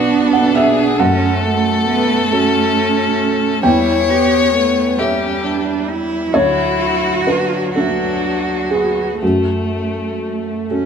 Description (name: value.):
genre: neoclassical piano and strings.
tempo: 40-46 BPM (dotted quarters).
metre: 6/8.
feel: rubato.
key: F# minor.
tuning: A4 = 440 Hz.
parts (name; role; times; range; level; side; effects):
rich violin; melody; 0.0-10.7 s; A3 to C#5; -20 LUFS; left 7 dB; none.
rich cello; second line; 0.0-10.9 s; A3 to G4; -19 LUFS; right 4 dB; none.
felt-muted upright piano; accompaniment; 0.0-10.9 s; B1 to G5; -18 LUFS; equal; none.
rich viola; accompaniment; 0.0-10.9 s; F#3 to B3; -21 LUFS; right 2 dB; none.
room: moderate large studio reverb, RT60 0.9 s.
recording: band playing live in one room.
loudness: -13 LUFS.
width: side -7 dB against mid.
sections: 0.0-10.9 A section.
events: none.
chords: 0.0 Bm; 1.0 F#m; 3.6 A7/E; 6.3 D; 9.2 F#m.